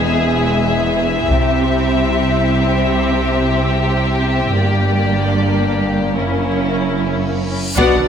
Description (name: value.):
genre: cinematic, epic orchestral film score.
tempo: 74 BPM.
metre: 4/4.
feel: straight.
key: unclear.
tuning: A4 = 440 Hz.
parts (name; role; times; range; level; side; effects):
dark symphonic violin section; melody; 0.0-8.1 s; A#4 to F#5; -22 LUFS; left 5 dB; none.
rich symphonic violin section; second line; 0.0-8.1 s; E4 to F#5; -22 LUFS; left 4 dB; none.
rich studio viola section; accompaniment; 0.0-8.1 s; D3 to D4; -23 LUFS; right 1 dB; none.
warm French horn section; sustained chords; 0.0-8.1 s; G#3 to F#4; -22 LUFS; left 3 dB; none.
rich symphonic cello section; bass; 0.0-8.1 s; E2 to C3; -21 LUFS; right 3 dB; none.
warm symphonic double bass section; bass; 0.0-8.0 s; E1 to C2; -20 LUFS; right 3 dB; none.
taiko ensemble; drums; 1.3-2.9, 7.8-8.1 s; none; -20 LUFS; left 1 dB; none.
reverse cymbal and impact; sound effects; 7.2-8.1 s; none; -27 LUFS; left 1 dB; none.
bright trombone section; sustained chords; 7.8-8.1 s; F#2 to B3; -27 LUFS; right 4 dB; none.
warm trumpet; stabs; 7.8-8.1 s; D5; -21 LUFS; right 2 dB; none.
room: moderate scoring stage reverb, RT60 2.1 s.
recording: none.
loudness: -14 LUFS.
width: side -8 dB against mid.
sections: 0.0-7.8 A section.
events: build-up 0.0-7.8; reverse cymbal 7.2-7.8; band accent 7.8; impact 7.8.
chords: 0.0 E; 1.3 C; 4.5 Gm; 6.2 F#7.